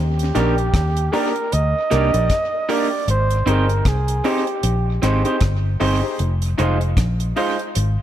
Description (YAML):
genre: roots reggae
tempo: 77 BPM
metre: 4/4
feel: swing 58% on 16ths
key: Eb major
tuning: A4 = 440 Hz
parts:
  - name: warm flugelhorn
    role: melody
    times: 0.0-5.0 s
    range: G4 to Eb5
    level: -23 LUFS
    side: right 3 dB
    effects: dub echo
  - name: vintage muted fingered electric bass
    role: bass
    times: 0.0-8.0 s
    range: F1 to Eb2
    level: -19 LUFS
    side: equal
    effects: none
  - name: deep reggae drum kit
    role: drums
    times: 0.2-8.0 s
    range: hi-hat, kick drum, rim click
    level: -24 LUFS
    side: equal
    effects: tape echo
  - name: electric guitar through a small old amp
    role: accompaniment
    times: 0.3-7.6 s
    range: Ab3 to C5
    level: -24 LUFS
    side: right 5 dB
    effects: dub echo
  - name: clear upright piano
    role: stabs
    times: 0.3-7.6 s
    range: Eb4 to D5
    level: -27 LUFS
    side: left 6 dB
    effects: none
room: light reverb, small room ambience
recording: none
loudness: -17 LUFS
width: side -11 dB against mid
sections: 0.0-8.0 A section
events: none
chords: 0.0 Ebmaj7; 3.1 Abmaj7; 6.2 Fm7